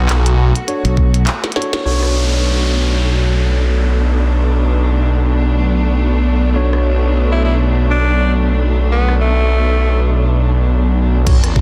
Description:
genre	glitch hop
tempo	102 BPM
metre	4/4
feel	swing 57% on 16ths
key	B minor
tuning	A4 = 440 Hz
part	rich chamber string section	sustained chords	0.0-11.6 s	A3 to F#4	-24 LUFS	equal	sidechain pumping
part	phased detuned saw bass	bass	0.0-11.6 s	A1 to B1	-16 LUFS	equal	phaser
part	glitchy drum kit	drums	0.1-2.1, 6.7-11.5 s	crash cymbal, handclaps, hi-hat, rim click, snare drum	-24 LUFS	equal	none
part	tine electric piano	stabs	0.7-11.3 s	D4 to C#5	-27 LUFS	equal	sidechain pumping, low-pass filter, delay
part	modern bright fingered electric bass	bass	0.8-1.3 s	B1	-16 LUFS	equal	none
part	electronic kick drum	drums	1.0-1.1, 11.3-11.6 s	none	-15 LUFS	equal	overdrive
part	downlifter and sub drop	sound effects	1.9-6.6, 11.3-11.6 s	none	-26 LUFS	equal	none
part	raspy tenor saxophone	melody	7.3-10.0 s	A3 to E4	-22 LUFS	equal	vintage 12-bit sampler grit, delay
room	light reverb, digital ambience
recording	dense, heavily limited modern master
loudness	-15 LUFS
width	mono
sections	0.0-1.9 A section; 1.9-11.3 B section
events	break 1.3-1.9; drum fill 1.4-1.9; band accent 1.7; impact 11.3-11.6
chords	0.0 Bm9

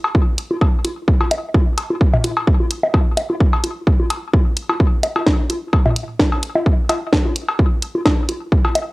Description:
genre	techno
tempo	129 BPM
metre	4/4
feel	swing 55% on 16ths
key	none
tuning	none
part	electronic cowbell, bongos and toms	percussion	0.0-8.9 s	none	-21 LUFS	equal	cassette tape, tape echo
part	electronic kick drum	drums	0.1-8.6 s	none	-15 LUFS	equal	overdrive, cassette tape
part	house drum kit	drums	0.4-8.9 s	hi-hat, snare drum	-20 LUFS	equal	overdrive, cassette tape
room	light reverb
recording	home recording on cassette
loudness	-15 LUFS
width	side -21 dB against mid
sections	0.0-8.9 A section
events	none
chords	none

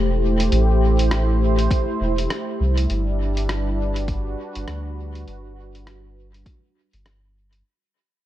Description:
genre	ambient dub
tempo	101 BPM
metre	4/4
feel	swing 59% on 16ths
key	unclear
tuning	A4 = 440 Hz
part	warm analog pad	sustained chords	0.0-7.7 s	G3 to C5	-24 LUFS	right 1 dB	chorus
part	soft dub sub bass	bass	0.0-7.6 s	E1 to D2	-21 LUFS	equal	none
part	lo-fi sampler-style drum kit	drums	0.4-7.6 s	hi-hat, rim click	-31 LUFS	equal	dub echo
part	electronic kick drum	drums	1.7-6.6 s	none	-23 LUFS	equal	overdrive
room	digital ambience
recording	echo-heavy mix, nothing above 10.5 kHz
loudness	-19 LUFS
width	side -13 dB against mid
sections	0.0-7.6 A section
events	fade-out 0.0-7.6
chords	0.0 Am7; 2.9 Gmaj7

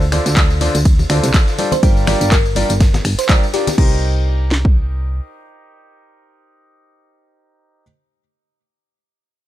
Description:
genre	piano house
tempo	123 BPM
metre	4/4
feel	swing 56% on 16ths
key	C dorian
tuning	A4 = 440 Hz
part	clear baby grand piano	riff	0.0-7.8 s	D3 to G5	-21 LUFS	equal	sidechain pumping, ping-pong delay
part	solid FM bass	bass	0.0-5.2 s	G1 to D2	-17 LUFS	equal	sidechain pumping
part	punchy analog drum machine	drums	0.0-3.9 s	crash cymbal, finger snaps, handclaps, hi-hat, ride cymbal, tambourine	-22 LUFS	left 1 dB	overdrive
part	tambourine and congas	percussion	0.0-3.8 s	none	-26 LUFS	left 4 dB	none
part	dusty soul sampler-style drum kit	drums	0.1-3.8 s	hi-hat, shaker, snare drum	-31 LUFS	equal	none
part	house drum kit	drums	0.4-4.7 s	kick drum, snare drum	-13 LUFS	equal	overdrive
part	thumb-piano-like synth pluck	melody	1.7-3.8 s	G4 to C5	-24 LUFS	equal	chorus, ping-pong delay
room	little or no reverb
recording	none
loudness	-12 LUFS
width	side -14 dB against mid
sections	0.0-3.8 A section; 3.8-7.7 B section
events	drop 0.0-3.8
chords	0.0 Dm7; 1.8 Gm7; 3.8 Cm7

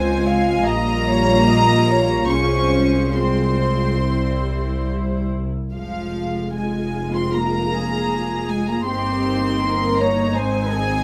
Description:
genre	classical, slow romantic movement for string orchestra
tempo	68-82 BPM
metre	4/4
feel	rubato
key	F minor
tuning	A4 = 440 Hz
part	warm symphonic violin section	melody	0.0-11.0 s	F5 to Db6	-27 LUFS	equal	none
part	warm symphonic violin section	second line	0.0-11.0 s	G4 to F5	-28 LUFS	equal	none
part	dark symphonic viola section	accompaniment	0.0-11.0 s	G3 to F4	-26 LUFS	equal	none
part	rich symphonic double bass section	bass	0.0-11.0 s	F1 to Db2	-25 LUFS	equal	none
part	warm symphonic cello section	bass	0.0-11.0 s	F3 to Db4	-27 LUFS	equal	none
room	light reverb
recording	none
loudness	-20 LUFS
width	mono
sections	0.0-11.0 A section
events	none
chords	0.0 Dbmaj7; 0.7 Bbm6; 2.3 Fm/C; 4.0 C; 5.7 Fm; 8.9 Eb/G; 10.4 Ab

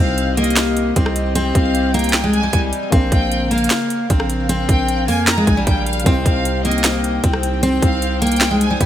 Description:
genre	hip hop, trap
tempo	153 BPM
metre	4/4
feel	half-time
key	C phrygian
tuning	A4 = 440 Hz
part	picked steel-string acoustic guitar	melody	0.0-8.9 s	G3 to C4	-19 LUFS	left 1 dB	ping-pong delay
part	warm studio violin section	second line	0.0-8.8 s	Eb5 to Bb5	-25 LUFS	equal	ping-pong delay
part	dark baby grand piano	accompaniment	0.0-8.9 s	C3 to F5	-28 LUFS	left 5 dB	lush chorus
part	airy breathy pad	sustained chords	0.0-8.9 s	Db3 to G5	-27 LUFS	equal	chorus
part	growling 808-style bass	bass	0.0-8.9 s	Bb1 to F2	-22 LUFS	equal	none
part	trap drum kit	drums	0.2-8.9 s	handclaps, hi-hat, kick drum, rim click, snare drum	-18 LUFS	equal	none
room	light reverb, small room ambience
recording	bright 1980s-style digital production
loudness	-14 LUFS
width	side -11 dB against mid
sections	0.0-8.9 A section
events	none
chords	0.0 Cm; 2.9 Bbm; 6.1 Cm

